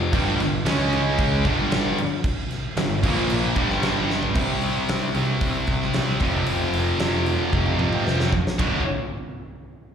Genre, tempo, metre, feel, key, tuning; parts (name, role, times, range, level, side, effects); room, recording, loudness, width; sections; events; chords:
hard rock; 113 BPM; 4/4; straight; A4 = 440 Hz
scooped high-gain guitar; riff; 0.0-8.8 s; D2 to C#4; -25 LUFS; left 8 dB; distortion, slapback echo
fuzz picked electric bass; bass; 0.0-8.8 s; D1 to C#2; -27 LUFS; equal; overdrive
high-gain distorted guitar; riff; 0.1-8.8 s; D2 to C#4; -25 LUFS; right 9 dB; distortion
huge arena drum kit; drums; 0.1-8.7 s; crash cymbal, hi-hat, kick drum, ride cymbal, snare drum, toms; -26 LUFS; equal
light reverb, small room ambience; live gig heard through the venue's PA, recital hall reverb; -20 LUFS; side -8 dB against mid
0.0-4.4 A section; 4.4-8.6 B section; 8.6-9.9 C section
drum fill 4.1, 7.5-8.6
0.1 G5; 0.7 C#5; 1.4 G5; 3.0 Bb5; 3.6 G5; 4.4 C5; 6.2 F5; 8.6 D5